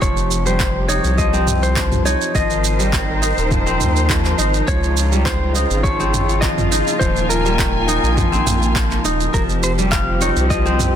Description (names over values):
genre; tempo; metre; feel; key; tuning
organic downtempo; 103 BPM; 4/4; straight; F minor; A4 = 436 Hz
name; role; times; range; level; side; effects
clean lap steel guitar; melody; 0.0-11.0 s; Bb4 to F5; -23 LUFS; left 1 dB; digital delay
dark studio string section; sustained chords; 0.0-11.0 s; C3 to Ab5; -23 LUFS; right 1 dB; sidechain pumping
kora; arpeggios; 0.0-11.0 s; F3 to Eb4; -22 LUFS; left 1 dB; tape echo
round analog bass; bass; 0.0-11.0 s; Eb1 to Eb2; -20 LUFS; equal; tube saturation
deep house drum kit; drums; 0.0-10.9 s; handclaps, shaker, toms; -23 LUFS; right 3 dB; none
electronic kick drum; drums; 0.0-10.6 s; none; -22 LUFS; equal; none
room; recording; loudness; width
light reverb, digital ambience; dense, heavily limited modern master; -15 LUFS; side -9 dB against mid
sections
0.0-11.0 A section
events
none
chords
0.0 Fsus2; 2.3 Abmaj7; 4.7 Dbmaj9; 7.0 Ebsus24; 9.3 Fsus2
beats
| 0.02 0.60 1.18 1.76 | 2.35 2.93 3.51 4.09 | 4.68 5.26 5.84 6.42 | 7.01 7.59 8.17 8.75 | 9.34 9.92 10.50